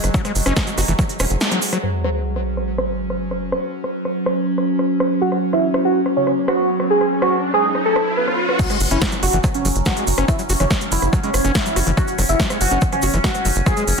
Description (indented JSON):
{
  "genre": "psychedelic trance",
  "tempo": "142 BPM",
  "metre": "4/4",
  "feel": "straight",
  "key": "unclear",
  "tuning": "A4 = 440 Hz",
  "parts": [
    { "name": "overtone-sweeping drone", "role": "sustained chords", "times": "0.0-14.0 s", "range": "F#3 to C#4", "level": "-23 LUFS", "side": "equal", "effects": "chorus, built-in reverb, sidechain pumping" },
    { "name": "tight sequencer bass", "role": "bass", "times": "0.0-1.4, 8.8-13.9 s", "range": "E1 to F#1", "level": "-20 LUFS", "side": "equal", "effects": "none" },
    { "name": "big-room dance drum kit", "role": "drums", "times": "0.0-14.0 s", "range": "crash cymbal, hi-hat, rim click, snare drum", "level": "-23 LUFS", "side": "right 1 dB", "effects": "overdrive, low-pass filter on snare, low-pass filter on hats, low-pass filter on cymbals, low-pass filter on room" },
    { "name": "tube shaker", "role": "percussion", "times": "0.0-1.8, 8.6-14.0 s", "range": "none", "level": "-31 LUFS", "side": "right 4 dB", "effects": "none" },
    { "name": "overdriven acid bass", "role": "riff", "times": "0.1-1.8, 8.6-13.8 s", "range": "E3 to F#4", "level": "-26 LUFS", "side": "moving between left 6 dB and right 4 dB", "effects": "distortion, auto-pan, cassette tape, sidechain pumping, digital delay" },
    { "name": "electronic kick drum", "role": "drums", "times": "0.1-1.1, 8.6-13.7 s", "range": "none", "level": "-20 LUFS", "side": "equal", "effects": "overdrive" },
    { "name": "sub drop, riser and impact", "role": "sound effects", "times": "1.8-10.3 s", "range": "none", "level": "-25 LUFS", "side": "equal", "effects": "none" },
    { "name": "wide unison lead", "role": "melody", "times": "5.2-13.8 s", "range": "C#4 to B4", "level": "-20 LUFS", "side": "right 2 dB", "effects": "phaser, sidechain pumping, digital delay" }
  ],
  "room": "moderate digital room reverb, RT60 1.0 s",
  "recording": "dense, heavily limited modern master",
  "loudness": "-16 LUFS",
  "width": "side -5 dB against mid",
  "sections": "0.0-1.8 A section; 1.8-8.6 B section; 8.6-14.0 C section",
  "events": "filter sweep on acid bass 0.0-1.8; band accent 1.4; impact 1.8-3.5, 8.6-10.3; riser 6.4-8.6; drop 8.6-14.0",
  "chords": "0.0 F#5",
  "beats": "| 0.14 0.56 0.99 1.41 | 1.83 2.25 2.68 3.10 | 3.52 3.95 4.37 4.79 | 5.21 5.64 6.06 6.48 | 6.90 7.33 7.75 8.17 | 8.59 9.02 9.44 9.86 | 10.28 10.71 11.13 11.55 | 11.97 12.40 12.82 13.24 | 13.66"
}